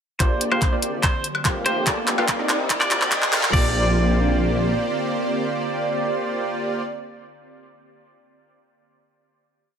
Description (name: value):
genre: future bass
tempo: 144 BPM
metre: 4/4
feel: half-time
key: Bb major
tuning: A4 = 441 Hz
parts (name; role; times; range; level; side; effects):
- clean electric guitar; melody; 0.2-6.8 s; C5 to D5; -26 LUFS; equal; sidechain pumping, low-pass filter, digital delay
- ethereal airy pad; sustained chords; 0.9-6.8 s; D3 to G4; -31 LUFS; right 1 dB; ensemble chorus, built-in reverb, sidechain pumping
- airy dreamy lead; arpeggios; 0.2-6.8 s; D5 to G5; -30 LUFS; right 2 dB; chorus, sidechain pumping, dub echo
- supersaw stab; riff; 0.2-6.8 s; Bb3 to G5; -26 LUFS; right 1 dB; sidechain pumping, low-pass filter
- wide detuned saw bass; bass; 0.2-4.7 s; F1 to G2; -24 LUFS; equal; chorus, sidechain pumping, high-pass filter
- electronic kick drum; drums; 0.2-3.6 s; none; -22 LUFS; equal; none
- pop drum kit; drums; 0.2-3.6 s; crash cymbal, handclaps, hi-hat, woodblock; -23 LUFS; equal; overdrive, high-pass filter on snare, high-pass filter on hats, high-pass filter on perc, high-pass filter on cymbals, high-pass filter on room
- riser; sound effects; 0.9-3.5 s; none; -31 LUFS; equal; none
room: moderate digital room reverb, RT60 1.1 s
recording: high-pass filter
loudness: -19 LUFS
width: side -7 dB against mid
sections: 0.2-3.5 build; 3.5-6.9 final chord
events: build-up 0.2-3.5; drum fill 0.2-3.5; filter sweep on supersaw synth 0.2-3.5; filter sweep 0.2-3.5; riser 0.9-3.5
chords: 0.2 Bb69; 1.0 F9sus4; 1.9 Gm9; 2.5 Cm9; 3.5 Bb69